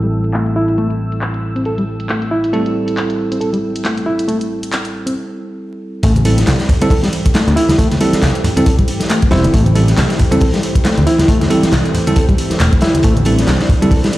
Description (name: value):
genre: breakbeat, breaks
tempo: 137 BPM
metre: 4/4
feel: swing 57% on 16ths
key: A minor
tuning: A4 = 440 Hz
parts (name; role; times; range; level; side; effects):
- lush unison pad; sustained chords; 0.0-14.2 s; E3 to E6; -23 LUFS; equal; chorus, vintage 12-bit sampler grit, sidechain pumping
- reed electric piano; riff; 0.0-14.1 s; G3 to A4; -19 LUFS; equal; overdrive, tube saturation, low-pass filter, digital delay
- bell-like tine electric piano; stabs; 0.0-13.9 s; G3 to C5; -19 LUFS; right 2 dB; digital delay
- picked electric bass; bass; 0.0-13.6 s; E1 to D2; -16 LUFS; equal; tube saturation
- garage drum kit; drums; 0.0-14.2 s; handclaps, hi-hat, ride cymbal; -25 LUFS; equal; none
- crunchy breakbeat drum kit; drums; 6.0-14.2 s; hi-hat, kick drum, snare drum; -15 LUFS; equal; none
- congas; percussion; 6.2-13.9 s; none; -20 LUFS; equal; none
room: light reverb, studio ambience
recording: played on a big sound system in a bare room, stone room reverb, vinyl crackle, low-pass filter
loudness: -12 LUFS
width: side -16 dB against mid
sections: 0.0-6.0 A section; 6.0-14.2 B section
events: filter sweep on drum 0.0-6.0; filter sweep on reed electric piano 0.0-6.0; filter sweep 0.0-6.0; break 5.2-6.0; drop 6.0-14.2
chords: 0.0 Am7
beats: 0.34 | 0.78 1.22 1.66 2.09 | 2.53 2.97 3.41 3.85 | 4.28 4.72 5.16 5.60 | 6.04 6.47 6.91 7.35 | 7.79 8.22 8.66 9.10 | 9.54 9.98 10.41 10.85 | 11.29 11.73 12.17 12.61 | 13.04 13.48 13.92